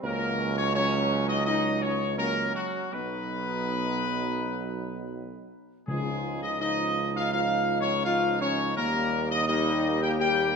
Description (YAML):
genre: classical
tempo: 83 BPM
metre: 4/4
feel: straight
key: Db major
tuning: A4 = 441 Hz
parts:
  - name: mellow trumpet section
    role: melody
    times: 0.0-10.6 s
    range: Gb4 to G5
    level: -28 LUFS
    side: left 1 dB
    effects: none
  - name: bright trombone section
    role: sustained chords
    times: 0.0-10.6 s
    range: F3 to Eb4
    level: -35 LUFS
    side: right 2 dB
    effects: none
  - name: mellow French horn section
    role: sustained chords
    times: 0.0-10.6 s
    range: Gb3 to G4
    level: -32 LUFS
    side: left 6 dB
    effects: none
  - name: warm tuba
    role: bass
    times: 0.0-10.6 s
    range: Cb2 to Eb2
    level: -31 LUFS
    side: right 4 dB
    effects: none
  - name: timpani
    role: percussion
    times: 5.9-6.9 s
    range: Db3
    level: -36 LUFS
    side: left 2 dB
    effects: none
room: wet concert hall reverb, RT60 1.8 s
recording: none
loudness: -25 LUFS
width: side -5 dB against mid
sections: 0.0-10.6 A section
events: none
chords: 0.0 Gb5/Db; 2.9 Cb; 5.9 Dbadd9; 8.8 Eb